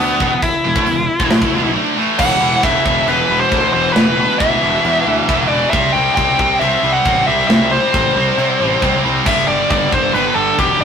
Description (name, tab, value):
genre	heavy metal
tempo	136 BPM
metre	4/4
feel	straight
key	E minor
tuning	A4 = 443 Hz
part	nasal lead guitar with a parked wah	melody	0.0-10.8 s	B3 to G5	-16 LUFS	left 1 dB	overdrive
part	fuzz guitar	riff	0.0-10.8 s	E2 to D4	-26 LUFS	right 1 dB	distortion
part	heavy high-gain guitar	riff	0.0-10.8 s	E2 to D4	-21 LUFS	left 5 dB	distortion
part	scooped high-gain guitar	riff	0.0-10.8 s	E2 to D4	-19 LUFS	right 7 dB	distortion
part	fuzz picked electric bass	bass	0.0-10.8 s	E1 to C3	-24 LUFS	right 1 dB	overdrive
part	tight metal drum kit	drums	0.2-10.7 s	china cymbal, crash cymbal, hi-hat, kick drum, snare drum	-19 LUFS	equal	none
room	moderate stone room reverb, RT60 1.2 s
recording	rough rehearsal-room recording, warm saturation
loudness	-12 LUFS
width	side -7 dB against mid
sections	0.0-2.2 A section; 2.2-10.8 B section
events	break 1.8-2.2; half time 2.2-10.8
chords	0.2 E5; 5.7 C5; 9.3 G5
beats	| 0.43 0.87 1.31 1.75 | 2.19 2.64 3.08 3.52 | 3.96 4.40 4.84 5.29 | 5.73 6.17 6.61 7.05 | 7.50 7.94 8.38 8.82 | 9.26 9.70 10.14 10.59